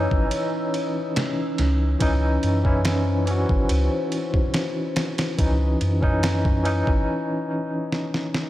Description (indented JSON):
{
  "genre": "trip hop",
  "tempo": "71 BPM",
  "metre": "4/4",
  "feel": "straight",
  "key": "C# harmonic minor",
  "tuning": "A4 = 441 Hz",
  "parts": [
    { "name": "barky tine electric piano", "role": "accompaniment", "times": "0.0-8.5 s", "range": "E3 to F#4", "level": "-25 LUFS", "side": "left 1 dB", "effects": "overdrive, medium tremolo, harmonic tremolo, tape echo" },
    { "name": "deep dark ambient pad", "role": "sustained chords", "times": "0.0-7.0 s", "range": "C#4 to E6", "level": "-31 LUFS", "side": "left 1 dB", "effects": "chorus, built-in reverb" },
    { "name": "soft dub sub bass", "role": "bass", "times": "0.0-7.1 s", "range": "G#1 to F#2", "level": "-22 LUFS", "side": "equal", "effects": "none" },
    { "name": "trip hop sampler-style drum kit", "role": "drums", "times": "0.1-8.5 s", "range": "kick drum, ride cymbal, snare drum", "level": "-25 LUFS", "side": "equal", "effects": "small room ambience" }
  ],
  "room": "light reverb, digital ambience",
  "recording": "none",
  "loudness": "-20 LUFS",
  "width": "side -15 dB against mid",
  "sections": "0.0-8.5 A section",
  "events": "break 7.1-8.5; drum fill 7.9-8.5",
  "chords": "0.0 C#madd9",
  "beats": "0.32 1.16 | 2.00 2.85 3.69 4.54 | 5.39 6.23 7.08 7.92"
}